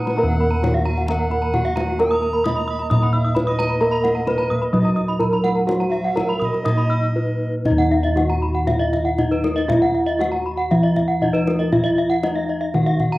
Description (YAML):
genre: Balinese gamelan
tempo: 118-132 BPM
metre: 4/4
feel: straight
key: Eb pelog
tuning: A4 = 444 Hz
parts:
  - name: gamelan-type bronze metallophone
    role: melody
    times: 0.0-13.2 s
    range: Eb4 to Eb5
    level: -23 LUFS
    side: equal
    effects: cassette tape
  - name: bright tenor recorder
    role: second line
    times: 0.0-7.5 s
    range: Cb5 to Cb6-23c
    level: -32 LUFS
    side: right 1 dB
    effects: cassette tape
  - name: gamelan-type bronze metallophone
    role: accompaniment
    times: 0.0-7.7 s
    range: Gb3-30c to Eb4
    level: -31 LUFS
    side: right 2 dB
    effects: cassette tape
  - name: gamelan-type bronze metallophone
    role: arpeggios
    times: 0.0-13.2 s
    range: Cb5-20c to Eb6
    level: -26 LUFS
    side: right 2 dB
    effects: cassette tape
  - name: gamelan-type bossed gongs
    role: bass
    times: 0.0-13.2 s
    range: Eb2 to Bb4-30c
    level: -20 LUFS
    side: equal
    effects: none
  - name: gamelan-type bronze metallophone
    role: arpeggios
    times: 0.1-13.1 s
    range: Bb4-30c to Fb6+20c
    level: -26 LUFS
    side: left 3 dB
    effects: cassette tape
  - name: kendang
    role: percussion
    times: 0.1-13.1 s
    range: none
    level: -27 LUFS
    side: left 1 dB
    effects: none
room: moderate spring reverb, RT60 1.6 s, small room ambience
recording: home recording on cassette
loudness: -17 LUFS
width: side -18 dB against mid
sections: 0.0-7.7 A section; 7.7-13.2 B section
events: drum fill 0.0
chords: none